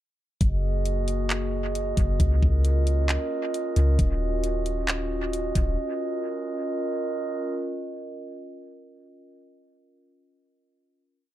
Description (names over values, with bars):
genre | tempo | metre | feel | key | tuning
hip hop, atmospheric cloud-rap | 134 BPM | 4/4 | half-time | Db major | A4 = 440 Hz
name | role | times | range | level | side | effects
glass harmonica | sustained chords | 0.4-7.6 s | Bb3 to Eb5 | -29 LUFS | right 2 dB | sidechain pumping
soft 808-style bass | bass | 0.4-5.8 s | Eb1 to Db2 | -24 LUFS | equal | none
trap drum kit | drums | 0.4-5.7 s | handclaps, hi-hat, kick drum | -25 LUFS | equal | none
room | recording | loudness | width
little or no reverb | echo-heavy mix | -23 LUFS | side -13 dB against mid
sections
0.4-7.6 verse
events
none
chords
0.4 Gb69; 2.2 Db69; 4.0 Ebm9; 5.8 Db69